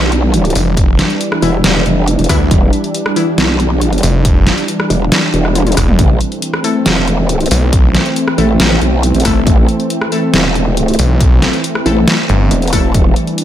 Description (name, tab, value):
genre	heavy wobble dubstep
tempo	138 BPM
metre	4/4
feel	half-time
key	A minor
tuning	A4 = 442 Hz
part	supersaw pad	sustained chords	0.0-13.4 s	E3 to D4	-17 LUFS	right 1 dB	sidechain pumping, low-pass filter
part	growl bass	bass	0.0-13.1 s	E1 to B1	-13 LUFS	equal	chorus, overdrive
part	dubstep drum kit	drums	0.1-13.4 s	hi-hat, rim click, snare drum, toms	-16 LUFS	left 1 dB	none
part	snarling distorted saw bass	bass	0.6-12.5 s	E1 to D2	-13 LUFS	equal	distortion, overdrive
part	electronic kick drum	drums	0.8-13.0 s	none	-12 LUFS	equal	none
part	orchestra-hit-like synth stab	stabs	1.4-3.3, 6.6-12.9 s	E3 to A4	-21 LUFS	left 4 dB	built-in reverb, tape echo
room	light reverb, digital ambience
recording	none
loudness	-10 LUFS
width	side -11 dB against mid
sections	0.0-13.4 A section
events	drum fill 5.6-6.0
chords	0.0 Em7; 6.0 Am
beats	0.34 | 0.77 1.21 1.64 2.08 | 2.51 2.94 3.38 3.81 | 4.25 4.68 5.12 5.55 | 5.99 6.42 6.86 7.29 | 7.73 8.16 8.60 9.03 | 9.47 9.90 10.34 10.77 | 11.21 11.64 12.08 12.51 | 12.95 13.38